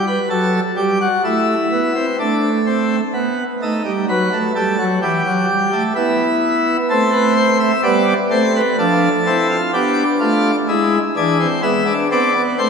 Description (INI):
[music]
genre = classical, baroque-style 4-part fugue for pipe organ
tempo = 64 BPM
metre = 4/4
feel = straight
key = unclear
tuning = A4 = 440 Hz
[part]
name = pipe organ, plenum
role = solo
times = 0.0-12.7 s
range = E3 to E5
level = -14 LUFS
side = equal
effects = none
[sound]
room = wet church reverb, RT60 2.8 s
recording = minimal, uncompressed stereo recording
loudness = -14 LUFS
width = side -6 dB against mid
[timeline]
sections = 0.0-12.7 A section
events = none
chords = 0.0 Em (rootless); 1.3 Am; 3.1 B7; 5.0 Em; 6.9 Am; 8.8 Dm/F; 10.7 E7